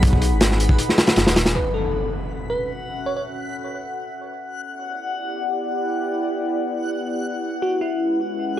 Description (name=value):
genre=drum and bass, jungle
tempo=158 BPM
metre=4/4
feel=straight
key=unclear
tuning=A4 = 441 Hz
part: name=warbly tape-like pad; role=sustained chords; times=0.0-8.6 s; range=G#3 to F#5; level=-27 LUFS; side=equal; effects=chorus, built-in reverb, phaser
part: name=dark detuned saw bass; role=bass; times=0.0-1.5 s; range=D#1 to B1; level=-20 LUFS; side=equal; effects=transformer saturation
part: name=crunchy breakbeat drum kit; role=drums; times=0.0-1.5 s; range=hi-hat, kick drum, snare drum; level=-16 LUFS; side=equal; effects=none
part: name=backwards swelling texture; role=texture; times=0.0-8.6 s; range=F#5 to B5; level=-30 LUFS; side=left 4 dB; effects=built-in reverb
part: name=impact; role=sound effects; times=1.5-3.1 s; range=none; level=-28 LUFS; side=equal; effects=none
part: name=bell-like FM electric piano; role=melody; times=1.6-3.2, 7.6-8.6 s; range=E4 to C#5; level=-26 LUFS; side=left 1 dB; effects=chorus, dub echo
room=small room ambience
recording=dry, gritty hardware recording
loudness=-20 LUFS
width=side -11 dB against mid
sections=0.0-1.6 A section; 1.6-8.6 B section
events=drop 0.0-1.6; impact 1.6-3.1; filter sweep on ambient pad 1.6-8.6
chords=0.0 G#m7; 1.6 F#m7; 4.6 Em7; 7.6 C#m7